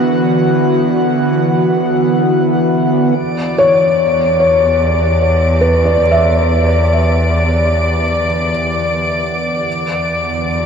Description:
ambient; free time; E dorian; A4 = 440 Hz
airy breathy pad; sustained chords; 0.0-10.7 s; D3 to F#5; -16 LUFS; right 1 dB; chorus, shimmer reverb
clear chamber cello section; bass; 3.2-10.7 s; E2; -16 LUFS; equal
muted studio violin section; texture; 3.2-10.7 s; D5 to D7; -19 LUFS; left 1 dB; shimmer reverb
felt-muted upright piano; arpeggios; 3.6-9.7 s; B4 to E5; -15 LUFS; left 2 dB; ping-pong delay, shimmer reverb
wet cathedral reverb, RT60 5.8 s; -11 LUFS; side -6 dB against mid
0.0-3.2 A section; 3.2-10.7 B section
fade-in on analog synth pad 3.2-10.7
0.0 Bm; 3.2 Em7; 9.7 Bm/E
free time

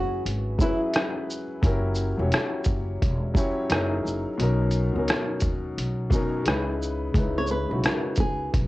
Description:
lo-fi hip hop; 87 BPM; 4/4; swing 62% on 16ths; C# dorian; A4 = 440 Hz
flamenco guitar; melody; 0.0-0.8, 7.4-8.5 s; E4 to C#5; -29 LUFS; equal; cassette tape, analog delay, plate reverb
warm upright piano; accompaniment; 0.0-8.7 s; B2 to C#5; -28 LUFS; left 1 dB; cassette tape, plate reverb
upright bass; bass; 0.0-8.7 s; E1 to D#2; -28 LUFS; equal
lo-fi sampler-style drum kit; drums; 0.3-8.7 s; hi-hat, kick drum, rim click, shaker; -25 LUFS; equal; cassette tape
moderate booth ambience, RT60 0.2 s; home recording on cassette; -23 LUFS; side -18 dB against mid
0.0-7.1 A section; 7.1-8.7 A section
0.0 F#9sus4; 1.6 F#7b9; 3.7 F#13; 4.4 Bmaj9; 6.5 C#m7
0.25 0.94 | 1.63 2.32 3.01 3.70 | 4.39 5.08 5.77 6.46 | 7.15 7.84 8.53

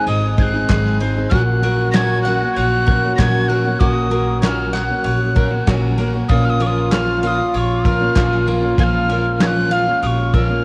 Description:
indie folk with a building arrangement; 96 BPM; 4/4; straight; A4 = 442 Hz
breathy mellow tin whistle; melody; 0.0-10.6 s; Db6 to Bb6; -25 LUFS; equal; analog delay
mellow trombone; second line; 0.0-10.6 s; Eb4 to Gb4; -26 LUFS; equal; cassette tape
picked steel-string acoustic guitar; accompaniment; 0.0-10.6 s; Ab2 to Ab4; -25 LUFS; equal; cassette tape
mellow tonewheel organ; sustained chords; 0.0-10.6 s; Eb3 to Db4; -34 LUFS; equal
mandolin; arpeggios; 0.0-10.6 s; F4 to Ab5; -27 LUFS; equal; cassette tape, analog delay
upright bass; bass; 0.1-10.6 s; Ab1 to Bb1; -23 LUFS; equal
soft brush drum kit; drums; 0.1-10.5 s; kick drum, ride cymbal, snare drum; -23 LUFS; equal; cassette tape
group handclap; percussion; 0.7-9.6 s; -32 LUFS; equal
little or no reverb; home recording on cassette; -17 LUFS; mono
0.0-10.6 A section
0.0 Ab; 1.3 Gb/Bb; 6.3 Bbm
0.07 0.69 | 1.31 1.94 2.56 3.18 | 3.80 4.43 5.05 5.67 | 6.29 6.92 7.54 8.16 | 8.79 9.41 10.03

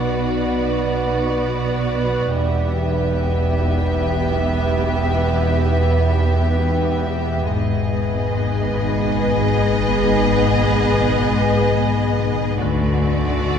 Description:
cinematic, suspense film score; 70 BPM; 3/4; straight; A4 = 438 Hz
rich symphonic violin section; melody; 0.0-13.6 s; D5 to E5; -27 LUFS; left 1 dB
rich studio violin section; second line; 0.0-13.6 s; F#4 to G#4; -26 LUFS; left 1 dB
clear studio viola section; accompaniment; 0.0-13.6 s; A3 to B3; -25 LUFS; right 1 dB
glassy FM pad; sustained chords; 0.0-13.6 s; A4 to G#5; -27 LUFS; right 1 dB; ensemble chorus, built-in reverb
clear studio cello section; bass; 0.0-13.6 s; E2 to D3; -26 LUFS; right 1 dB
rich studio double bass section; bass; 0.0-13.6 s; E1 to D2; -26 LUFS; right 2 dB
organ-like drone; drone; 0.0-13.6 s; B1; -27 LUFS; right 1 dB; ensemble chorus, built-in reverb
marimba with medium mallets; riff; 0.2-13.6 s; E2 to D4; -22 LUFS; left 2 dB
wet scoring stage reverb, RT60 2.0 s; heard from further back in the room; -16 LUFS; side -7 dB against mid
0.0-13.6 A section
0.0 Bm; 2.3 Em; 7.5 G#m; 12.6 D
0.61 1.47 | 2.33 3.19 4.04 | 4.90 5.76 6.61 | 7.47 8.33 9.19 | 10.04 10.90 11.76 | 12.61 13.47

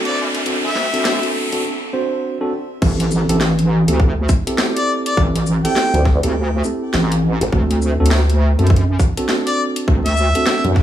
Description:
glitch hop; 102 BPM; 4/4; swing 61% on 16ths; A dorian; A4 = 439 Hz
mellow tine electric piano; stabs; 0.0-10.8 s; C4 to C5; -22 LUFS; right 1 dB; vintage 12-bit sampler grit, sidechain pumping, digital delay
wobble bass; bass; 0.0-10.3 s; A1 to F#2; -16 LUFS; equal; chorus, overdrive, high-pass filter
riser; sound effects; 0.0-1.6 s; -23 LUFS; equal
clear harmonica; melody; 0.1-10.6 s; D5 to G5; -22 LUFS; left 1 dB; vintage 12-bit sampler grit, digital delay
drum and bass drum kit; drums; 0.1-10.8 s; crash cymbal, hi-hat, shaker, snare drum; -23 LUFS; equal; overdrive
electronic kick drum; drums; 2.8-10.8 s; -15 LUFS; equal; overdrive
vowel-sweep wobble bass; bass; 5.9-10.8 s; A1 to F#2; -16 LUFS; equal; chorus
light reverb, digital ambience; small room ambience; -14 LUFS; side -11 dB against mid
0.0-2.8 A section; 2.8-10.8 B section
build-up 0.0-2.8; riser 0.0-1.6; break 1.6-2.8; drop 2.8-10.8
0.0 D7; 2.8 Am7; 7.5 D7
| 0.47 1.05 1.64 2.23 | 2.82 3.41 4.00 4.58 | 5.17 5.76 6.35 6.94 | 7.52 8.11 8.70 9.29 | 9.88 10.46

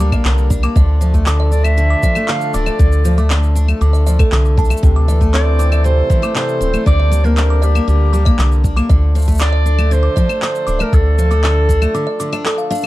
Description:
folktronica; 118 BPM; 4/4; straight; D minor; A4 = 440 Hz
music box; second line; 0.0-12.8 s; A4 to D6; -26 LUFS; equal; ping-pong delay, plate reverb
hand-pumped harmonium; sustained chords; 0.0-12.9 s; E3 to Bb4; -25 LUFS; left 2 dB; plate reverb
picked steel-string acoustic guitar; arpeggios; 0.0-12.9 s; C3 to D5; -23 LUFS; equal; low-pass filter, digital delay
round analog bass; bass; 0.0-11.9 s; D1 to D2; -13 LUFS; equal
electronic shaker, claves and handclaps; drums; 0.0-12.9 s; -23 LUFS; left 1 dB
electronic kick drum; drums; 0.1-11.8 s; -14 LUFS; equal
warm clarinet; melody; 1.5-12.5 s; G4 to F5; -20 LUFS; right 2 dB; digital delay, plate reverb
light reverb; dark, warm production; -12 LUFS; side -17 dB against mid
0.0-12.9 A section
break 11.9-12.9
0.0 Gm/D; 0.8 Dm; 4.8 Am/D; 6.9 Gm/D; 8.9 Dm
0.25 | 0.76 1.27 1.78 2.29 | 2.79 3.30 3.81 4.32 | 4.83 5.34 5.84 6.35 | 6.86 7.37 7.88 8.39 | 8.90 9.40 9.91 10.42 | 10.93 11.44 11.95 12.46

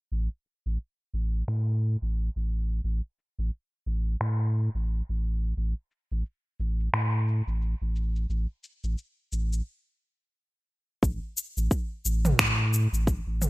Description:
organic downtempo; 88 BPM; 4/4; swing 59% on 16ths; A4 = 440 Hz
warm sub bass; bass; 0.1-13.5 s; A1 to A2; -26 LUFS; equal; tube saturation, sidechain pumping
deep house drum kit; drums; 0.1-13.5 s; finger snaps, shaker, toms; -28 LUFS; equal; gated reverb
electronic kick drum; drums; 11.0-13.2 s; -27 LUFS; equal
little or no reverb; bright 1980s-style digital production, low-pass filter; -26 LUFS; side -20 dB against mid
0.1-11.0 A section; 11.0-13.5 B section
filter sweep on sub bass 0.1-11.0; filter sweep 0.1-11.0; stop 9.7-11.0
| 0.12 0.80 1.48 2.16 | 2.85 3.53 4.21 4.89 | 5.57 6.25 6.94 7.62 | 8.30 8.98 9.66 10.35 | 11.03 11.71 12.39 13.07

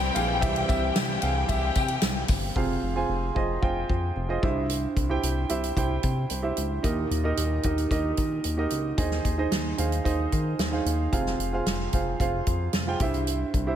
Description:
piano-driven pop; 112 BPM; 4/4; straight; F minor; A4 = 440 Hz
warm studio violin section; second line; 0.0-2.3 s; G4 to G5; -30 LUFS; left 4 dB; slapback echo
clear upright piano; accompaniment; 0.0-13.8 s; G2 to Ab5; -28 LUFS; right 3 dB; slapback echo
rich studio string section; sustained chords; 0.0-2.5 s; E3 to C4; -36 LUFS; left 2 dB
chorused synth bass; bass; 0.0-13.8 s; F1 to Eb3; -29 LUFS; left 1 dB
natural country drum kit; drums; 0.2-13.7 s; hi-hat, kick drum, ride cymbal, snare drum; -28 LUFS; equal
tambourine; percussion; 0.2-2.4 s; -42 LUFS; left 10 dB
moderate lush hall reverb, RT60 2.3 s; big arena sound; -24 LUFS; side -10 dB against mid
0.0-2.6 A section; 2.6-13.8 B section
upright piano solo 0.0-2.6
0.0 C; 2.6 Fm; 4.4 C; 6.8 Eb; 9.0 Ab/Eb; 11.1 Fm; 13.0 C
| 0.42 0.95 1.49 2.02 | 2.56 3.09 3.63 4.16 | 4.70 5.23 5.77 6.30 | 6.84 7.38 7.91 8.45 | 8.98 9.52 10.05 10.59 | 11.13 11.66 12.20 12.73 | 13.27

